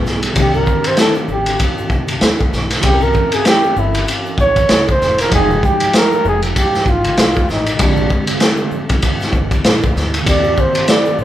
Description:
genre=hip hop, jazz-hop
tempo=97 BPM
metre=4/4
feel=swing 58% on 16ths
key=unclear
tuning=A4 = 439 Hz
part: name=breathy flugelhorn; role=melody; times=0.0-11.2 s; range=D4 to D5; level=-16 LUFS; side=right 1 dB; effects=none
part: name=tine electric piano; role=accompaniment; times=0.0-11.2 s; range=Db3 to G5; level=-22 LUFS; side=right 1 dB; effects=medium stereo tremolo
part: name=upright bass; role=bass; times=0.0-11.2 s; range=E1 to Eb2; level=-22 LUFS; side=equal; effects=none
part: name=crunchy breakbeat drum kit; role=drums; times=0.1-11.1 s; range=hi-hat, kick drum, ride cymbal, snare drum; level=-15 LUFS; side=equal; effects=none
part: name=congas and egg shaker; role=percussion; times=0.1-11.2 s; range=none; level=-32 LUFS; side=left 4 dB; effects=none
room=moderate large studio reverb, RT60 1.1 s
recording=band playing live in one room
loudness=-12 LUFS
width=side -12 dB against mid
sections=0.4-11.2 A section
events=flugelhorn solo 0.4-11.2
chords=0.4 Cmadd9; 2.8 C7b9; 5.3 Fm9; 7.8 Bb13; 10.3 Eb6

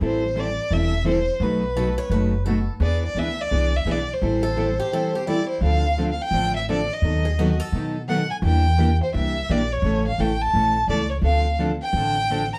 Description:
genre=acoustic string swing (jazz manouche)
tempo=171 BPM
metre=4/4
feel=swing 62% on 8ths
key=A minor, D minor from 5.6 s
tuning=A4 = 440 Hz
part: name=rich violin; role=melody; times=0.0-12.6 s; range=B4 to Bb5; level=-27 LUFS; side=equal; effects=none
part: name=picked plugged-in steel-string acoustic guitar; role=accompaniment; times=0.0-12.4 s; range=B2 to A4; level=-29 LUFS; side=equal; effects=none
part: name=picked steel-string acoustic guitar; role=accompaniment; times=0.0-12.4 s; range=B2 to B4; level=-32 LUFS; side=equal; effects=none
part: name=upright bass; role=bass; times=0.0-12.5 s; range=E1 to B2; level=-26 LUFS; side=equal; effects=none
part: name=picked swing-style acoustic guitar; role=second line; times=1.8-8.0 s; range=E4 to C#5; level=-36 LUFS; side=equal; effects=none
room=wet studio reverb, RT60 0.6 s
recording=heard from further back in the room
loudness=-22 LUFS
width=mono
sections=0.0-5.6 A section; 5.6-12.6 B section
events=none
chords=0.0 Am7; 1.4 B7; 2.8 E7; 4.2 Am7; 5.6 Dm7; 7.0 B7/D#; 8.4 Em7b5; 9.8 A; 11.2 Dm7

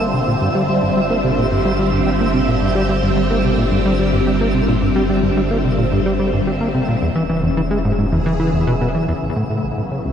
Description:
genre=ambient, sequencer-driven space music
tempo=109 BPM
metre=4/4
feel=straight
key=unclear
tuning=A4 = 436 Hz
part: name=phased string machine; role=sustained chords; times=0.0-10.1 s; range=Db3 to A4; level=-19 LUFS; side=equal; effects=ensemble chorus, phaser
part: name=plucky analog bass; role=riff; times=0.0-10.1 s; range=A1 to Bb3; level=-18 LUFS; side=left 1 dB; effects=ping-pong delay
part: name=warm sub bass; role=bass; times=0.0-10.1 s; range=E1 to A1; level=-24 LUFS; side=equal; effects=none
part: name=twinkling granular texture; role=texture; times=0.0-9.2 s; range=E5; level=-27 LUFS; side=right 3 dB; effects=built-in reverb
room=moderate huge ambient reverb, RT60 9.1 s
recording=none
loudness=-15 LUFS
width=side -8 dB against mid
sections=0.0-9.2 A section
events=filter sweep on analog synth bass 0.0-9.2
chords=0.0 Gm7; 7.0 E; 9.2 A

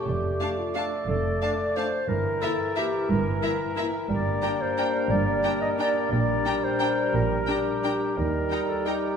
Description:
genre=classical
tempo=178 BPM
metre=3/4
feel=uneven beats, rubato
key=G minor from 4.1 s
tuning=A4 = 440 Hz
part: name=dark cor anglais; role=second line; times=0.0-9.2 s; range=Bb4 to D5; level=-33 LUFS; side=right 1 dB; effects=none
part: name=mellow clarinet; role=second line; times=0.0-9.2 s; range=F4 to Eb5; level=-28 LUFS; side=left 2 dB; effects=none
part: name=mellow bassoon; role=accompaniment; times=0.0-9.2 s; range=E3 to A3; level=-32 LUFS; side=right 1 dB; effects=none
part: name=rich studio double bass section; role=bass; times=0.1-8.4 s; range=F1 to Eb2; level=-31 LUFS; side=right 3 dB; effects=none
part: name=warm studio cello section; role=bass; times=0.1-8.4 s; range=F2 to Eb3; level=-32 LUFS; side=right 3 dB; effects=none
part: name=warm studio violin section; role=melody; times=0.4-9.0 s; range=A5 to Bb5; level=-38 LUFS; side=left 2 dB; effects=none
part: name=warm studio violin section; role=second line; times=0.4-8.9 s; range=E5 to G5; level=-35 LUFS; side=left 2 dB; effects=none
part: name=warm studio viola section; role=accompaniment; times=0.4-8.9 s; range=D4 to E4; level=-37 LUFS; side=equal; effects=none
part: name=dark French horn section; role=sustained chords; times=0.4-9.2 s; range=G3 to E4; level=-32 LUFS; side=left 4 dB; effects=none
room=wet scoring stage reverb, RT60 1.9 s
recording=minimal, uncompressed stereo recording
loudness=-23 LUFS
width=side -7 dB against mid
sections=0.0-9.2 A section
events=none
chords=0.1 Dm/F; 2.1 Edim/G; 4.1 Gm; 6.1 Gm/Bb; 8.2 Eb

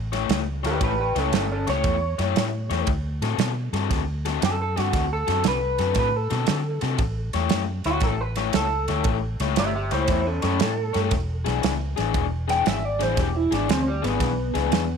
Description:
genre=electric blues shuffle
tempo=116 BPM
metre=4/4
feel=swing 67% on 8ths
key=A mixolydian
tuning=A4 = 440 Hz
part: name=vintage muted fingered electric bass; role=bass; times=0.0-15.0 s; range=E1 to D3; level=-27 LUFS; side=equal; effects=none
part: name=crunchy overdriven guitar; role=riff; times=0.1-14.8 s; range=D3 to C#5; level=-27 LUFS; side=left 15 dB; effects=none
part: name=natural country drum kit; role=drums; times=0.1-14.9 s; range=kick drum, ride cymbal, snare drum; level=-27 LUFS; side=right 5 dB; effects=none
part: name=electric guitar through a small old amp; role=melody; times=0.7-15.0 s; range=G3 to G5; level=-26 LUFS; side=right 2 dB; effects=analog chorus, slapback echo
room=light reverb, small room ambience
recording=1960s-style stereo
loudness=-21 LUFS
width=side -6 dB against mid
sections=0.0-15.0 A section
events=clean electric guitar solo 0.0-15.0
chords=0.0 A7; 2.9 D7; 7.0 A7; 11.1 E7

